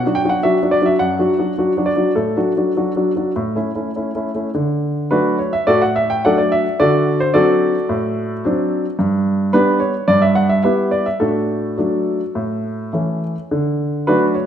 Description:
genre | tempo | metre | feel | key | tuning
classical-period piano sonatina | 99-111 BPM | 4/4 | rubato | D major | A4 = 441 Hz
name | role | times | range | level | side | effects
warm baby grand piano | solo | 0.0-14.5 s | F#2 to G5 | -15 LUFS | equal | none
room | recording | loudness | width
wet recital hall reverb, RT60 1.6 s | minimal, uncompressed stereo recording | -15 LUFS | side -9 dB against mid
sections
0.0-4.5 A section; 4.5-14.5 B section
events
none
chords
0.0 Bm (rootless); 2.2 D/A; 3.4 A; 4.5 D; 6.8 D7; 9.0 G; 10.1 Em/G; 11.2 D/A; 12.4 A; 13.5 D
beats
0.43 1.00 1.57 | 2.16 2.76 3.36 3.96 | 4.54 5.11 5.67 6.24 | 6.80 7.34 7.90 8.45 | 9.00 9.54 10.08 10.64 | 11.20 11.78 12.36 12.93 | 13.51 14.07

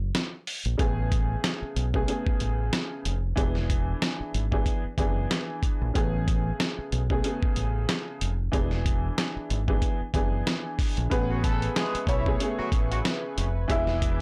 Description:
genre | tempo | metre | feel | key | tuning
hip hop, boom-bap hip-hop | 93 BPM | 4/4 | swing 56% on 16ths | A major | A4 = 440 Hz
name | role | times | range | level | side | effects
deep dub fingered electric bass | bass | 0.0-14.2 s | E1 to B1 | -31 LUFS | equal | transformer saturation
dusty soul sampler-style drum kit | drums | 0.1-14.2 s | hi-hat, kick drum, rim click, snare drum | -30 LUFS | equal | none
warm upright piano | accompaniment | 0.8-14.2 s | C#3 to G#4 | -34 LUFS | equal | cassette tape, high-pass filter, low-pass filter, plate reverb
bright upright piano | melody | 11.1-14.2 s | B3 to E5 | -34 LUFS | equal | high-pass filter, low-pass filter, plate reverb
warm analog pad | sustained chords | 11.1-14.2 s | B4 to D6 | -42 LUFS | equal | chorus, high-pass filter, low-pass filter, plate reverb
warm horn section | stabs | 11.3-13.0 s | E3 to A4 | -36 LUFS | equal | high-pass filter, low-pass filter, tape echo, plate reverb
room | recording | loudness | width
light reverb | blown-out, overdriven recording, overdrive | -27 LUFS | mono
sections
0.0-11.1 A section; 11.1-14.2 B section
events
break 0.0-0.8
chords
0.0 N.C.; 0.8 Amaj9; 3.4 E7; 6.0 Amaj9; 8.5 E7; 11.1 Amaj9; 13.7 E7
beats
0.15 | 0.79 1.44 2.08 2.73 | 3.37 4.02 4.66 5.31 | 5.95 6.60 7.24 7.89 | 8.54 9.18 9.82 10.47 | 11.12 11.76 12.40 13.05 | 13.70

